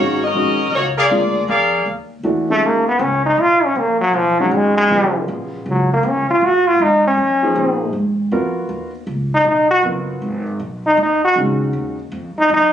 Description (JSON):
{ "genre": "jazz, big band swing", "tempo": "158 BPM", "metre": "4/4", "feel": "swing 66% on 8ths", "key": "Eb minor", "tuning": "A4 = 436 Hz", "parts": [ { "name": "warm saxophone section", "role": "melody", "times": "0.0-1.5 s", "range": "Bb3 to Eb5", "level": "-18 LUFS", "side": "left 2 dB", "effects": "plate reverb" }, { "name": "warm concert grand piano", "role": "accompaniment", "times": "0.0-11.9 s", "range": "Db3 to Bb4", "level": "-20 LUFS", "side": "equal", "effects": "none" }, { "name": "upright bass", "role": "bass", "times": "0.0-12.7 s", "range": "Gb1 to Bb2", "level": "-24 LUFS", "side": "right 1 dB", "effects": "none" }, { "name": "warm trumpet section", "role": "stabs", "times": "1.0-1.9 s", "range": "Ab4 to F5", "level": "-15 LUFS", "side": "left 1 dB", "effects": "none" }, { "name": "brilliant trombone", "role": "melody", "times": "2.5-12.7 s", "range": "F3 to Gb4", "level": "-14 LUFS", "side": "equal", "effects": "plate reverb" } ], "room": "moderate club reverb, RT60 0.5 s", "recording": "recorded on a phone in the room, club reverb, compression", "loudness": "-14 LUFS", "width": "side -10 dB against mid", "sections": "0.0-1.9 A section; 1.9-12.7 B section", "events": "trombone solo 1.9-12.7", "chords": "0.0 Ebm7; 1.1 Bb7; 1.9 Ebm7; 3.4 Abm7; 4.9 Ebm7" }